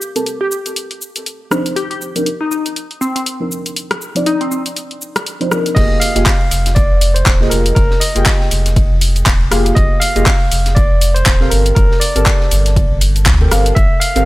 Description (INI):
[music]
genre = deep house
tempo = 120 BPM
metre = 4/4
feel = swing 58% on 16ths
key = unclear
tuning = A4 = 440 Hz
[part]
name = deep mellow chord stab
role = stabs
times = 0.0-14.3 s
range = F3 to A5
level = -20 LUFS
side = equal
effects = chorus, vintage 12-bit sampler grit, sidechain pumping, tape echo
[part]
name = deep house drum kit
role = drums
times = 0.0-14.2 s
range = cabasa, crash cymbal, handclaps, hi-hat, rim click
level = -18 LUFS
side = equal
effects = none
[part]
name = glassy wavetable pluck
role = melody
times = 0.4-4.6 s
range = C4 to G4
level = -20 LUFS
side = left 2 dB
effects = chorus, tape echo
[part]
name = overdriven tine electric piano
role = melody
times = 5.7-14.3 s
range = Bb4 to F5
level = -20 LUFS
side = equal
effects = vintage 12-bit sampler grit, analog delay
[part]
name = sub bass with octave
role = bass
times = 5.8-14.2 s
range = Eb1 to D2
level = -15 LUFS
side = equal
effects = tube saturation
[part]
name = electronic kick drum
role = drums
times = 5.8-13.9 s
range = none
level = -14 LUFS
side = equal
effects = none
[part]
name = tight funk drum kit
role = drums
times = 5.8-14.2 s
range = hi-hat, ride cymbal, snare drum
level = -32 LUFS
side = left 1 dB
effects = none
[sound]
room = small room ambience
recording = dry, gritty hardware recording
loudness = -12 LUFS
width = side -18 dB against mid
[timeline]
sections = 0.0-5.8 A section; 5.8-14.3 B section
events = drop 5.8-14.3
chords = 0.0 Gm11; 0.5 Cm11; 5.8 Fm11; 11.5 Gm11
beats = 0.26 0.76 1.26 | 1.76 2.26 2.76 3.26 | 3.76 4.26 4.76 5.26 | 5.76 6.26 6.76 7.26 | 7.76 8.26 8.76 9.26 | 9.76 10.26 10.76 11.26 | 11.76 12.26 12.76 13.26 | 13.76